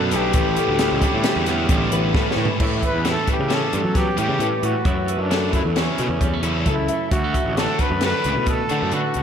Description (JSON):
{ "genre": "math rock and midwest emo", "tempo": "133 BPM", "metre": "5/4", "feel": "straight", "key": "unclear", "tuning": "A4 = 440 Hz", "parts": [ { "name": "breathy trumpet", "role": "melody", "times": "0.0-9.2 s", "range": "C#4 to B4", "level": "-25 LUFS", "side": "equal", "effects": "analog delay" }, { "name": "twelve-string electric guitar", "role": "accompaniment", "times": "0.0-9.2 s", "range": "D2 to F#4", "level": "-28 LUFS", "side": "right 6 dB", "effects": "wide subtle chorus" }, { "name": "twelve-string electric guitar", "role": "arpeggios", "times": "0.0-9.2 s", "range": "A4 to G5", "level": "-28 LUFS", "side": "left 5 dB", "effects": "analog chorus, analog delay" }, { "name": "cranked stack guitar", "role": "riff", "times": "0.0-9.0 s", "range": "A2 to E4", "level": "-27 LUFS", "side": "left 2 dB", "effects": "overdrive" }, { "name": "fuzz picked electric bass", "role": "bass", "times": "0.0-9.2 s", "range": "A1 to F#3", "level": "-24 LUFS", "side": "equal", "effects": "overdrive" }, { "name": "compact cocktail drum kit", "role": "drums", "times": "0.1-9.2 s", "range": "crash cymbal, hi-hat, kick drum, snare drum, toms", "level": "-23 LUFS", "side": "equal", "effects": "none" } ], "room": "moderate church reverb, RT60 3.4 s", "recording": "dreamy mix soaked in reverb", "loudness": "-18 LUFS", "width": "side -8 dB against mid", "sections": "0.0-2.6 A section; 2.6-9.2 B section", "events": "drum fill 2.1-2.6", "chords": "0.3 A9sus4; 2.6 A9; 4.9 F#m7; 7.1 Dmaj9", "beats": "| 0.35 0.80 1.25 1.70 2.15 | 2.60 3.05 3.50 3.95 4.40 | 4.85 5.31 5.76 6.21 6.66 | 7.12 7.57 8.02 8.47 8.93" }